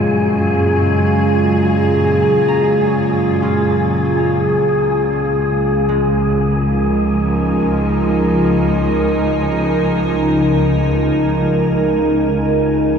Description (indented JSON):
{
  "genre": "ambient",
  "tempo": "free time",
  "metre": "none",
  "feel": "none",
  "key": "Db major",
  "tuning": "A4 = 440 Hz",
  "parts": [
    { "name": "evolving wavetable pad", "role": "sustained chords", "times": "0.0-13.0 s", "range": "Bb2 to Bb4", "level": "-16 LUFS", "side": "right 1 dB", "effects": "chorus, built-in reverb" },
    { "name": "concert harp", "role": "arpeggios", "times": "0.0-9.8 s", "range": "Ab3 to Bb5", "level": "-33 LUFS", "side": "left 1 dB", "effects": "none" },
    { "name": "muted studio cello section", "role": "bass", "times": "0.0-13.0 s", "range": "Db2 to Gb2", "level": "-21 LUFS", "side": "equal", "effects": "none" },
    { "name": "analog drone", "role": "drone", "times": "0.0-13.0 s", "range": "Db3 to Ab3", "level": "-19 LUFS", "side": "left 1 dB", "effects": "chorus" },
    { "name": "wind-like tuned noise texture", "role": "texture", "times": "0.0-13.0 s", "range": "Ab4 to Ab5", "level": "-25 LUFS", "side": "left 1 dB", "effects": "built-in reverb" }
  ],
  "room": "wet concert hall reverb, RT60 2.1 s",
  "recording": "none",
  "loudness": "-13 LUFS",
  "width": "side -7 dB against mid",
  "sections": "0.0-13.0 A section",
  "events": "none",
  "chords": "0.0 Gbmaj9; 4.6 Db69"
}